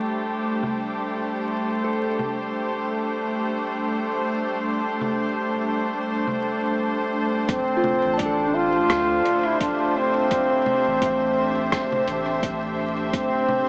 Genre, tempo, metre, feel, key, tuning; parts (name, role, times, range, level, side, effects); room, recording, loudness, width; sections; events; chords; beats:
ambient dub; 85 BPM; 4/4; swing 57% on 16ths; A4 = 439 Hz
dark studio string section; sustained chords; 0.0-13.7 s; G3 to E5; -27 LUFS; equal
lo-fi sampler-style drum kit; drums; 0.6-13.6 s; congas, hi-hat, rim click; -34 LUFS; equal; low-pass filter on perc, small room ambience, low-pass filter on hats, low-pass filter on snare, dub echo
soft synth bell; arpeggios; 1.8-13.7 s; D4 to A5; -34 LUFS; equal
clear trombone; melody; 7.5-13.7 s; C4 to F4; -24 LUFS; equal; dub echo
soft dub sub bass; bass; 7.5-13.7 s; D1 to D2; -40 LUFS; equal
electronic kick drum; drums; 7.5-13.3 s; -32 LUFS; equal; small room ambience
moderate huge ambient reverb, RT60 4.1 s; vinyl crackle, small speaker sound; -24 LUFS; mono
0.0-7.5 A section; 7.5-13.7 B section
0.0 D5; 7.5 Dm7
0.43 1.14 | 1.84 2.55 3.25 3.96 | 4.66 5.37 6.08 6.78 | 7.49 8.19 8.90 9.61 | 10.31 11.02 11.72 12.43 | 13.13